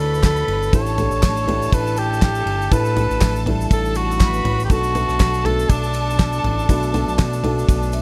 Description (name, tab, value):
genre	piano-driven pop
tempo	121 BPM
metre	4/4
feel	swing 56% on 16ths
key	unclear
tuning	A4 = 440 Hz
part	mellow cor anglais	melody	0.0-8.0 s	D4 to C#5	-25 LUFS	equal	none
part	warm studio violin section	second line	0.0-8.0 s	A4 to B5	-32 LUFS	equal	digital delay
part	dark upright piano	accompaniment	0.0-8.0 s	A2 to E5	-28 LUFS	equal	none
part	fat analog bass	bass	0.0-8.0 s	G1 to D2	-25 LUFS	equal	none
part	tube shaker	percussion	0.1-8.0 s	none	-42 LUFS	equal	none
part	damped 70s drum kit	drums	0.2-8.0 s	handclaps, kick drum, ride cymbal, snare drum, toms	-22 LUFS	equal	none
room	little or no reverb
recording	none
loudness	-19 LUFS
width	mono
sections	0.0-8.0 A section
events	upright piano fill 7.7-8.0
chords	0.0 Dsus2; 0.7 A7sus4; 4.7 Bm7